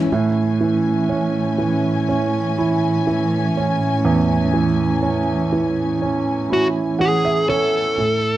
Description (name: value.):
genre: pop.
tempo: 61 BPM.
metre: 4/4.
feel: straight.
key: A major.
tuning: A4 = 440 Hz.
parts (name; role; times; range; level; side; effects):
clear grand piano; accompaniment; 0.0-8.4 s; E2 to F#5; -19 LUFS; right 3 dB; none.
warm studio string section; sustained chords; 0.0-7.9 s; A2 to G#5; -22 LUFS; equal; none.
dark smooth lead guitar; melody; 6.5-8.4 s; F#4 to A4; -17 LUFS; equal; overdrive.
room: little or no reverb.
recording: dry, close 1970s-style studio recording.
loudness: -16 LUFS.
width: side -14 dB against mid.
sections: 0.1-8.0 A section.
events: grand piano fill 6.5-8.0.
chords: 0.1 Amaj7.